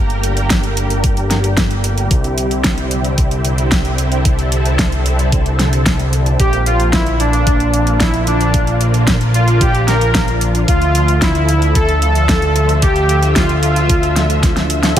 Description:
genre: synthwave.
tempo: 112 BPM.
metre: 4/4.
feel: straight.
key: unclear.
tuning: A4 = 437 Hz.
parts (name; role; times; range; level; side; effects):
analog string pad; sustained chords; 0.0-15.0 s; C3 to E5; -21 LUFS; equal; ensemble chorus, sidechain pumping.
fat analog bass; bass; 0.0-15.0 s; G1 to D2; -16 LUFS; equal; sidechain pumping.
pop drum kit; drums; 0.1-15.0 s; crash cymbal, hi-hat, snare drum; -19 LUFS; equal; overdrive.
electronic kick drum; drums; 0.5-15.0 s; none; -16 LUFS; equal; overdrive.
soft supersaw; melody; 6.4-14.7 s; D4 to Bb4; -17 LUFS; equal; ping-pong delay.
room: light reverb.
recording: none.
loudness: -12 LUFS.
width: side -10 dB against mid.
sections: 0.0-15.0 A section.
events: drum fill 14.4-15.0.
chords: 0.0 Gm; 2.1 Cadd9; 6.4 Bbadd9; 10.7 Dmadd9.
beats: 0.50 1.04 1.57 | 2.11 2.65 3.18 3.72 | 4.25 4.79 5.32 5.86 | 6.39 6.93 7.47 8.00 | 8.54 9.07 9.61 10.14 | 10.68 11.22 11.75 12.29 | 12.82 13.36 13.89 14.43 | 14.97.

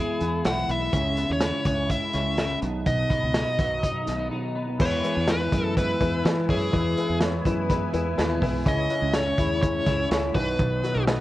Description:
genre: jangly indie pop.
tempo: 124 BPM.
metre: 4/4.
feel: straight.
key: E major.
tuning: A4 = 444 Hz.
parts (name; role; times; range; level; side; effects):
dark smooth lead guitar; melody; 0.0-11.0 s; G#4 to F#5; -28 LUFS; equal; overdrive.
electric guitar through a small old amp; accompaniment; 0.0-11.2 s; B2 to E4; -33 LUFS; right 4 dB; tube saturation, wide subtle chorus.
twelve-string electric guitar; arpeggios; 0.0-11.2 s; B2 to E4; -30 LUFS; left 3 dB; ensemble chorus.
fingered electric bass; bass; 0.0-11.2 s; B1 to E3; -29 LUFS; equal; none.
vintage drum kit; drums; 0.2-11.2 s; crash cymbal, hi-hat, kick drum, snare drum; -27 LUFS; equal; none.
warm upright piano; accompaniment; 4.8-11.2 s; D#4 to C#5; -30 LUFS; left 3 dB; none.
soft string machine; sustained chords; 5.5-11.2 s; E4 to E6; -36 LUFS; equal; ensemble chorus.
room: light reverb, small room ambience.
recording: worn, warbling old tape, cassette tape, warbly pitch drift.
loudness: -22 LUFS.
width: side -15 dB against mid.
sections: 0.0-4.8 A section; 4.8-11.2 B section.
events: none.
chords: 0.0 E; 0.9 C#m; 2.6 B; 4.8 E; 8.7 C#m; 10.3 B.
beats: 0.45 | 0.93 1.42 1.90 2.38 | 2.87 3.35 3.83 4.31 | 4.80 5.28 5.76 6.25 | 6.73 7.21 7.69 8.18 | 8.66 9.14 9.63 10.11 | 10.59 11.07.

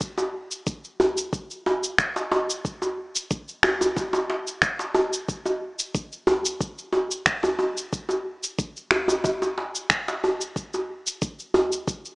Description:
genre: downtempo.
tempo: 91 BPM.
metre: 4/4.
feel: straight.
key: none.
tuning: none.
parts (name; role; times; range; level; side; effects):
electronic kick drum; drums; 0.0-12.0 s; none; -28 LUFS; equal; none.
electronic shaker and finger snaps; drums; 0.0-12.2 s; none; -24 LUFS; equal; none.
djembe; percussion; 0.2-11.7 s; none; -23 LUFS; equal; none.
room: light reverb.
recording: dry, gritty hardware recording, small speaker sound.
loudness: -23 LUFS.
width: side -27 dB against mid.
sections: 0.0-12.2 A section.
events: none.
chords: none.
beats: | 0.01 0.67 1.33 1.99 | 2.65 3.31 3.97 4.62 | 5.29 5.94 6.60 7.26 | 7.92 8.58 9.24 9.90 | 10.56 11.22 11.88.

